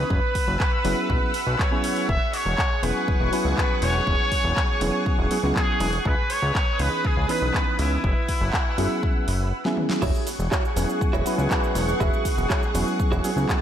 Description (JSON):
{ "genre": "nu-disco, nu disco", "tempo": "121 BPM", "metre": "4/4", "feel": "straight", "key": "E major", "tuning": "A4 = 443 Hz", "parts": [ { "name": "clear trumpet section", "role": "melody", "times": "0.0-9.5 s", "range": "E4 to E5", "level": "-27 LUFS", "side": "equal", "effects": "ping-pong delay" }, { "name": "reed electric piano", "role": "accompaniment", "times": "0.0-13.6 s", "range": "E3 to B4", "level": "-28 LUFS", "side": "equal", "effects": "phaser, sidechain pumping, ping-pong delay" }, { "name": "string machine, full ensemble", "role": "sustained chords", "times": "0.0-13.6 s", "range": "G#4 to E6", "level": "-30 LUFS", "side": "equal", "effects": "ensemble chorus, sidechain pumping" }, { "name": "fat analog bass", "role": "bass", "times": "0.0-13.5 s", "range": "E1 to C#2", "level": "-25 LUFS", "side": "equal", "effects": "none" }, { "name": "electronic kick drum", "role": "drums", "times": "0.1-13.6 s", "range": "none", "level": "-24 LUFS", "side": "equal", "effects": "none" }, { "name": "pop drum kit", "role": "drums", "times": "0.4-13.6 s", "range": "crash cymbal, handclaps, hi-hat, shaker, snare drum, toms", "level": "-31 LUFS", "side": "equal", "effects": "none" }, { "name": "direct-recorded clean electric guitar", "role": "riff", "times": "10.0-13.6 s", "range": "E4 to G#5", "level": "-30 LUFS", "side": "right 4 dB", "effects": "lush chorus, ping-pong delay" } ], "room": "moderate lush hall reverb, RT60 1.8 s, digital ambience", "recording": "dreamy mix soaked in reverb, faint mains hum", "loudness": "-20 LUFS", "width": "side -10 dB against mid", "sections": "0.0-10.0 A section; 10.0-13.6 A section", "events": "drum fill 9.6-10.0; clean electric guitar fill 13.0-13.6", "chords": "0.1 F#7sus4; 2.1 E69; 6.1 C#m9; 8.0 F#7sus4; 10.0 E69" }